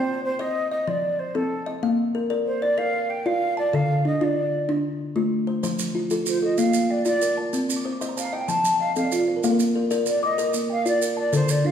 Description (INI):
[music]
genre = southern african traditional, mbira-style interlocking cycle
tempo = 126 BPM (dotted quarters)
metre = 12/8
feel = straight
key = unclear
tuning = A4 = 440 Hz
[part]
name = breathy mellow jazz flute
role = melody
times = 0.0-11.7 s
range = A4 to A5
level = -24 LUFS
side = right 1 dB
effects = none
[part]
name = kalimba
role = arpeggios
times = 0.0-11.7 s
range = D3 to D6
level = -24 LUFS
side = left 2 dB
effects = none
[part]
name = maracas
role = percussion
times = 5.6-11.6 s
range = none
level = -32 LUFS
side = right 6 dB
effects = none
[part]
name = buzzing kalimba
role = arpeggios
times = 5.8-11.7 s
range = D3 to Eb6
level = -27 LUFS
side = right 4 dB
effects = none
[sound]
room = wet recital hall reverb, RT60 1.7 s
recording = heard from further back in the room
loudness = -21 LUFS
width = side -8 dB against mid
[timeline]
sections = 0.0-11.7 A section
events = kalimba fill 7.6-9.4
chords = 0.0 Cm; 0.9 F; 1.8 Bb; 3.7 Dm; 5.6 F; 6.6 Bb; 7.5 Cm; 8.5 F; 9.4 Bb